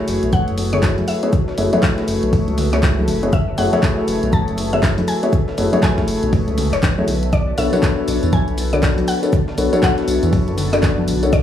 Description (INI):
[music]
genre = deep house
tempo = 120 BPM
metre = 4/4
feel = swing 60% on 16ths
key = F# minor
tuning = A4 = 440 Hz
[part]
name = felt-muted upright piano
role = stabs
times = 0.0-11.3 s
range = A3 to D5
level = -20 LUFS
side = left 2 dB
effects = sidechain pumping, tape echo
[part]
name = analog string pad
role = texture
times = 0.0-11.4 s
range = A4 to A5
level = -33 LUFS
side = equal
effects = ensemble chorus
[part]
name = warbly tape-like pad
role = texture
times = 0.0-11.4 s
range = F#4 to B5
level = -28 LUFS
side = left 2 dB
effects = chorus, built-in reverb, phaser, sidechain pumping
[part]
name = round analog bass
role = bass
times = 0.1-11.4 s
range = E1 to E2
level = -21 LUFS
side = equal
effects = transformer saturation
[part]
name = breakbeat sampler-style drum kit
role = drums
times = 0.1-11.4 s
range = hi-hat, shaker, snare drum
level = -35 LUFS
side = left 2 dB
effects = none
[part]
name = deep house drum kit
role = drums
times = 0.1-11.4 s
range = handclaps, hi-hat, tambourine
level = -27 LUFS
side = equal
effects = none
[part]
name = mallet-like synth pluck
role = melody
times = 0.3-11.4 s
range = C#5 to A5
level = -26 LUFS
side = left 2 dB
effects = chorus, analog delay
[part]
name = electronic kick drum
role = drums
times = 0.3-11.4 s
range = none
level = -18 LUFS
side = equal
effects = none
[part]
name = congas and bongos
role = percussion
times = 0.3-11.4 s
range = none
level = -26 LUFS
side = right 2 dB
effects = none
[sound]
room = digital ambience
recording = dry, gritty hardware recording, studio reverb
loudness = -15 LUFS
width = side -10 dB against mid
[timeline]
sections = 0.0-11.4 A section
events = none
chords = 0.0 F#m9; 7.3 Bm9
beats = 0.33 0.83 | 1.33 1.83 2.33 2.83 | 3.33 3.83 4.33 4.83 | 5.33 5.83 6.33 6.83 | 7.33 7.83 8.33 8.83 | 9.33 9.83 10.33 10.83 | 11.33